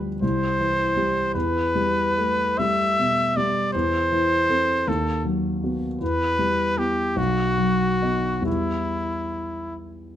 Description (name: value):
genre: classical, romantic duo for trumpet and grand piano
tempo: 45-54 BPM (dotted quarters)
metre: 6/8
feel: rubato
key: E minor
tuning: A4 = 442 Hz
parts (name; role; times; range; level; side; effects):
- dark grand piano; accompaniment; 0.0-10.2 s; B1 to A4; -24 LUFS; left 1 dB; none
- bright trumpet; melody; 0.2-9.8 s; E4 to E5; -22 LUFS; equal; none
room: moderate stone room reverb, RT60 0.9 s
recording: close, detailed microphones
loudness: -20 LUFS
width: side -11 dB against mid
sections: 0.0-10.2 A section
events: none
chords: 0.2 C; 1.3 Em; 3.7 Am/E; 4.9 B/D#; 6.0 Em; 7.2 B; 8.5 Em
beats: 0.22 | 1.34 2.59 | 3.74 4.87 | 6.01 7.17 | 8.46 9.78